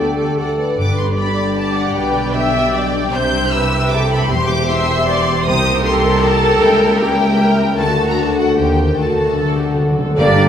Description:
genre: classical, dramatic, fast romantic movement for symphony orchestra.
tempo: 154 BPM.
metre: 3/4.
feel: straight.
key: G major.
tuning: A4 = 439 Hz.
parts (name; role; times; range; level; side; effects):
clear symphonic violin section; melody; 0.0-10.5 s; D5 to G6; -21 LUFS; left 3 dB; none.
clear symphonic violin section; second line; 0.0-10.5 s; G3 to E5; -23 LUFS; left 1 dB; none.
large flute ensemble; second line; 0.0-0.4, 10.2-10.5 s; D5 to G5; -26 LUFS; right 3 dB; none.
mellow clarinet; second line; 0.0-0.6, 10.2-10.5 s; A4 to D5; -24 LUFS; equal; none.
rich studio viola section; accompaniment; 0.0-10.5 s; D4 to E5; -20 LUFS; right 1 dB; none.
mellow French horn section; sustained chords; 0.0-0.8, 10.2-10.5 s; D4 to B4; -25 LUFS; left 2 dB; none.
concert harp; arpeggios; 0.0-10.5 s; G2 to A5; -19 LUFS; left 3 dB; none.
clear studio double bass section; bass; 0.0-10.5 s; E1 to Eb2; -23 LUFS; right 2 dB; none.
rich symphonic cello section; bass; 0.0-10.5 s; C2 to A3; -22 LUFS; right 2 dB; none.
timpani; percussion; 0.8-1.3, 9.0-10.5 s; G2 to D3; -20 LUFS; left 1 dB; none.
warm bassoon; accompaniment; 10.2-10.5 s; Bb3; -20 LUFS; equal; none.
mellow trombone section; sustained chords; 10.2-10.5 s; G3 to Bb3; -18 LUFS; right 3 dB; none.
room: wet recital hall reverb, RT60 1.4 s.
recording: recorded in a church or concert hall.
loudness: -13 LUFS.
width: side -8 dB against mid.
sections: 0.8-10.2 A section.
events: timpani fill 9.0-10.2.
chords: 0.4 D; 0.8 G; 2.0 G/B; 3.1 C; 4.3 C/E; 5.5 Cm7; 6.6 C#dim7; 7.8 D; 8.6 Cm/Eb; 9.0 D.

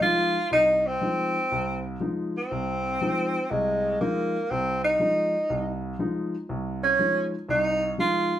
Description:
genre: jazz.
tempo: 121 BPM.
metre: 4/4.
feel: swing 68% on 8ths.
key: F minor.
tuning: A4 = 437 Hz.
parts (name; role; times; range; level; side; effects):
mellow tenor saxophone; melody; 0.0-8.4 s; Ab3 to F4; -23 LUFS; right 1 dB; none.
warm grand piano; accompaniment; 0.0-8.3 s; C2 to Eb4; -29 LUFS; left 1 dB; none.
room: moderate studio reverb, RT60 0.8 s.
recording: band playing live in one room.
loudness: -23 LUFS.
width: side -11 dB against mid.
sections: 0.0-8.4 A section.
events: none.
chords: 0.0 Fm7.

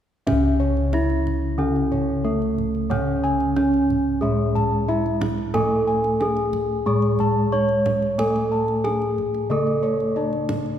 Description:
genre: Javanese gamelan.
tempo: 91 BPM.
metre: 4/4.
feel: straight.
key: C# pelog.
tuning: A4 = 441 Hz.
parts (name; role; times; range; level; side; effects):
gamelan-type bronze metallophone; melody; 0.3-10.8 s; A3 to C#5; -22 LUFS; right 1 dB; none.
gamelan-type bronze metallophone; accompaniment; 0.3-10.8 s; C#3 to A3; -28 LUFS; equal; none.
gamelan-type bossed gongs; arpeggios; 0.3-10.5 s; A4 to C#6; -28 LUFS; left 2 dB; none.
gamelan-type bossed gongs; bass; 0.3-10.8 s; C#2 to A4; -26 LUFS; left 1 dB; none.
kendang; percussion; 0.3-10.7 s; none; -32 LUFS; right 3 dB; none.
room: moderate concert hall reverb, RT60 2.5 s.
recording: minimal, uncompressed stereo recording.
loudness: -19 LUFS.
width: side -10 dB against mid.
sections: 0.3-10.8 A section.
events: none.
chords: none.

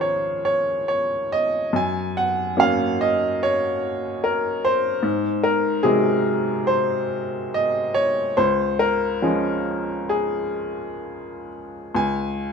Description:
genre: classical, lyrical solo piano.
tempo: 62-75 BPM.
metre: 4/4.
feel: rubato.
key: Db major.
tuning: A4 = 440 Hz.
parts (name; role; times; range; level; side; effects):
bright upright piano; solo; 0.0-12.5 s; Db2 to Ab5; -20 LUFS; equal; none.
room: light reverb.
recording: close, detailed microphones.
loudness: -20 LUFS.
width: side -6 dB against mid.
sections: 0.0-11.9 A section.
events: none.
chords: 0.0 Dbadd9; 1.7 Gb; 5.0 Ab7; 8.4 Db; 11.9 C#5.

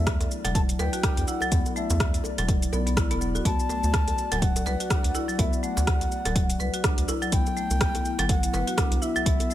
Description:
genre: afro house.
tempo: 124 BPM.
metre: 4/4.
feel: swing 57% on 16ths.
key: unclear.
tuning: A4 = 440 Hz.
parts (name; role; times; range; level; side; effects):
bansuri; melody; 0.0-9.5 s; E5 to A5; -32 LUFS; left 1 dB; digital delay.
dark analog pad; sustained chords; 0.0-9.5 s; B3 to D5; -36 LUFS; left 2 dB; chorus, sidechain pumping.
round analog bass; bass; 0.0-9.4 s; D1 to E2; -28 LUFS; equal; sidechain pumping.
deep house drum kit; drums; 0.1-9.5 s; hi-hat, rim click, shaker; -31 LUFS; equal; small room ambience.
electronic kick drum; drums; 0.1-9.4 s; none; -25 LUFS; equal; overdrive, small room ambience.
djembe; percussion; 0.2-9.5 s; none; -37 LUFS; right 2 dB; none.
marimba with medium hard mallets; arpeggios; 0.4-9.5 s; F#3 to B4; -30 LUFS; left 1 dB; sidechain pumping, digital delay.
room: digital ambience.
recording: none.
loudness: -22 LUFS.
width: side -13 dB against mid.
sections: 0.0-9.5 A section.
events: none.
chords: 0.0 E7(no3); 3.5 D; 7.3 Cmaj7.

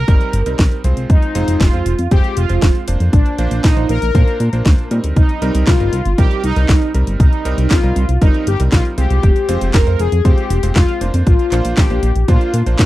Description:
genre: italo disco.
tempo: 118 BPM.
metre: 4/4.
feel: straight.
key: C minor.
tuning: A4 = 440 Hz.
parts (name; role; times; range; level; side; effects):
analog synth brass; melody; 0.0-12.9 s; D4 to Bb4; -20 LUFS; left 1 dB; chorus, tape echo.
chorused synth bass; bass; 0.0-12.9 s; F1 to Bb2; -16 LUFS; equal; none.
bright electric grand piano; stabs; 0.1-12.9 s; G3 to C5; -25 LUFS; right 2 dB; none.
electronic kick drum; drums; 0.1-12.9 s; none; -12 LUFS; equal; overdrive, small room ambience.
house drum kit; drums; 0.1-12.9 s; handclaps, hi-hat, snare drum; -22 LUFS; equal; overdrive, small room ambience.
room: little or no reverb.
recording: dry, close 1970s-style studio recording.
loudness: -12 LUFS.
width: side -16 dB against mid.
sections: 0.0-12.9 A section.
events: none.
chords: 0.0 Cm7; 1.1 Fm; 3.1 Bbadd9; 5.2 Cm7; 9.2 Fm; 11.3 Bbadd9.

